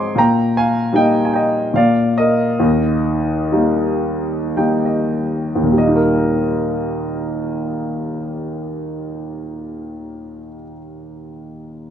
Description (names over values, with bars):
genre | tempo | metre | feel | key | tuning
classical, lyrical solo piano | 48-78 BPM | 3/4 | rubato | Eb major | A4 = 440 Hz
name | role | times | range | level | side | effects
warm grand piano | solo | 0.0-11.9 s | Eb2 to Eb6 | -16 LUFS | equal | none
room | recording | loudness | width
moderate studio reverb, RT60 0.5 s | minimal, uncompressed stereo recording, lossy compression artefacts | -15 LUFS | side -9 dB against mid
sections
0.0-5.8 A section; 5.8-9.4 B section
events
slowing down 0.2-5.8; grand piano fill 4.0-5.8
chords
0.2 Eb/Bb; 1.8 Bb; 2.6 Eb